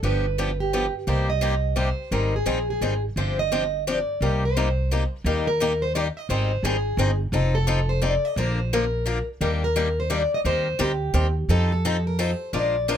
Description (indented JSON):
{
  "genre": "acoustic string swing (jazz manouche)",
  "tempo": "173 BPM",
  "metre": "3/4",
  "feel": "swing 62% on 8ths",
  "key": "C minor, Eb major from 5.3 s",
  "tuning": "A4 = 440 Hz",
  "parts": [
    { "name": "picked swing-style acoustic guitar", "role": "accompaniment", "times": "0.0-13.0 s", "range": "C3 to Bb4", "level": "-26 LUFS", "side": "left 4 dB", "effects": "none" },
    { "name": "upright bass", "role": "bass", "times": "0.0-13.0 s", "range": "F1 to F2", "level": "-24 LUFS", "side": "right 1 dB", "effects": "none" },
    { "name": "picked plugged-in steel-string acoustic guitar", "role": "melody", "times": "0.1-13.0 s", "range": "G4 to Eb5", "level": "-26 LUFS", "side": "right 1 dB", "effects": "none" }
  ],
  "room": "little or no reverb",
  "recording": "close, detailed microphones",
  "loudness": "-21 LUFS",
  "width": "side -9 dB against mid",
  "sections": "0.0-5.3 A section; 5.3-13.0 B section",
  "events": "none",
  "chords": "0.0 G7; 1.1 Cm7; 2.1 Abmaj7; 3.2 G7sus4; 4.2 Cm7; 5.3 Eb; 6.3 Abmaj7; 7.3 F7; 8.4 Bb; 9.4 Ebmaj7; 10.5 Cm7; 11.5 F7"
}